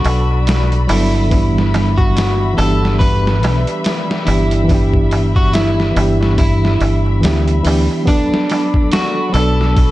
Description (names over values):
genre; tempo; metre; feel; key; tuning
trip hop; 71 BPM; 4/4; swing 58% on 16ths; unclear; A4 = 440 Hz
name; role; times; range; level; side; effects
electric guitar at the edge of break-up; melody; 0.0-9.9 s; D4 to B4; -20 LUFS; equal; tape echo
reed electric piano; accompaniment; 0.0-9.9 s; E3 to A4; -19 LUFS; right 1 dB; overdrive, tremolo, vintage 12-bit sampler grit, tape echo
muted studio string section; sustained chords; 0.0-9.9 s; G3 to B5; -26 LUFS; left 3 dB; none
trip hop sampler-style drum kit; drums; 0.0-9.9 s; hi-hat, kick drum, snare drum; -18 LUFS; equal; none
deep dub fingered electric bass; bass; 0.1-9.9 s; G1 to D2; -15 LUFS; equal; none
darbuka; percussion; 0.1-9.9 s; none; -27 LUFS; right 2 dB; none
room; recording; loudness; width
little or no reverb; dark, warm production, nothing above 10.8 kHz; -12 LUFS; side -16 dB against mid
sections
0.0-9.9 A section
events
none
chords
0.0 Bm7; 1.3 G6; 8.1 Bm7